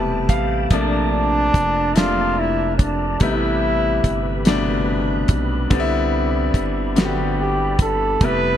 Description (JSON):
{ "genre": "slow six-eight R&B", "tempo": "48 BPM (dotted quarters)", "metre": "6/8", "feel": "straight", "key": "C major", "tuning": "A4 = 440 Hz", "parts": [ { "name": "clear grand piano", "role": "accompaniment", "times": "0.0-8.6 s", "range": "B2 to A5", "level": "-21 LUFS", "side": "left 2 dB", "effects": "none" }, { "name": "percussive tonewheel organ", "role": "sustained chords", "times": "0.0-8.6 s", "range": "E4 to B5", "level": "-31 LUFS", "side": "equal", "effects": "overdrive, chorus vibrato, slow rotary speaker" }, { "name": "rubbery square bass", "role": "bass", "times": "0.0-8.6 s", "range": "E1 to C2", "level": "-24 LUFS", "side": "right 1 dB", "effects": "none" }, { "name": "damped 70s drum kit", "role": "drums", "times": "0.3-8.4 s", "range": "hi-hat, kick drum, snare drum", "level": "-19 LUFS", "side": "right 1 dB", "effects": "gated reverb" }, { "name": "bright trombone", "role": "melody", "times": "0.7-8.6 s", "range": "Db4 to B4", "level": "-22 LUFS", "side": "right 1 dB", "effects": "none" } ], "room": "light reverb, small room ambience", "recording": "bright 1980s-style digital production", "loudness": "-17 LUFS", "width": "side -10 dB against mid", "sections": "0.0-8.6 A section", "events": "grand piano fill 0.0-0.7", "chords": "0.0 Fmaj9#11; 0.7 Bbmaj7; 3.2 Am9; 5.7 Cmaj9" }